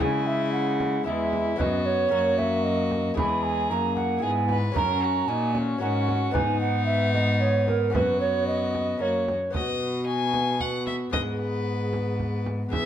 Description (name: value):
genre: classical, renaissance-style consort dance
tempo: 113 BPM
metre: 3/4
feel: straight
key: B major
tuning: A4 = 440 Hz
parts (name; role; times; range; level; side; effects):
- rich violin; melody; 0.0-12.9 s; D#4 to G#5; -32 LUFS; left 5 dB; none
- mellow hollow tenor recorder; second line; 0.0-12.9 s; F#4 to B5; -27 LUFS; right 4 dB; none
- clear trombone; accompaniment; 0.0-12.9 s; G#3 to D#4; -30 LUFS; left 2 dB; none
- lute; accompaniment; 0.0-12.9 s; E2 to B4; -34 LUFS; left 6 dB; none
- rich cello; bass; 0.0-12.9 s; E2 to C#3; -28 LUFS; equal; none
- frame drum; percussion; 0.0-12.9 s; none; -32 LUFS; right 2 dB; none
room: wet stone room reverb, RT60 1.2 s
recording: none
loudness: -22 LUFS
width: side -10 dB against mid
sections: 0.0-9.5 A section; 9.5-12.9 B section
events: none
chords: 0.0 C#m; 1.6 F#sus4; 2.1 F#; 3.2 E; 4.8 F#; 6.3 G#m; 7.9 F#sus4; 9.0 F#; 9.5 B; 11.1 G#m